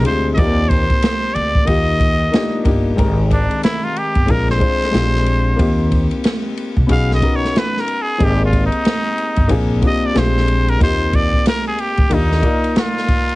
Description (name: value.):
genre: hip hop, jazz-hop.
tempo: 92 BPM.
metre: 4/4.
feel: swing 60% on 16ths.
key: Eb major.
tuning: A4 = 444 Hz.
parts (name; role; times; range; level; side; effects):
trumpet with straight mute; melody; 0.0-13.4 s; D4 to F5; -20 LUFS; equal; none.
dark grand piano; accompaniment; 0.0-13.3 s; Eb3 to D5; -21 LUFS; left 3 dB; none.
upright bass; bass; 0.0-12.4 s; G1 to Eb2; -18 LUFS; equal; none.
open jazz drum kit; drums; 0.0-13.4 s; hi-hat, kick drum, ride cymbal, snare drum; -18 LUFS; equal; none.
room: light reverb.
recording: heavily compressed radio sound, vinyl crackle, nothing above 10.3 kHz.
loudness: -14 LUFS.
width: side -19 dB against mid.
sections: 0.0-3.0 A section; 3.0-13.4 B section.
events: muted trumpet solo 3.0-13.4.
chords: 0.4 Eb6; 1.7 Ebmaj9; 3.0 Abmaj9; 4.3 Bb9; 4.9 Bb13; 5.6 Eb6; 6.9 B69; 8.2 Abmaj9; 9.5 Bb13; 10.8 Eb6; 12.1 Ebmaj9.